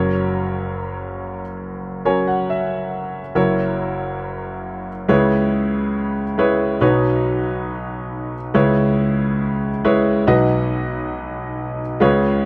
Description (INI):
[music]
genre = folk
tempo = 69 BPM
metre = 4/4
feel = straight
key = B major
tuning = A4 = 440 Hz
[part]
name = warm grand piano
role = solo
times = 0.0-12.5 s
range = F#1 to G#5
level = -20 LUFS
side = equal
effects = none
[sound]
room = light reverb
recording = none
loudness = -20 LUFS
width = mono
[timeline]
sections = 0.0-3.4 A section; 3.4-12.5 B section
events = none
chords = 0.0 F#; 3.4 F#7; 5.1 C#m7; 6.8 Badd9; 8.5 C#m7; 10.3 B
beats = 0.76 1.62 2.49 | 3.36 4.22 5.09 5.96 | 6.82 7.68 8.55 9.41 | 10.28 11.14 12.00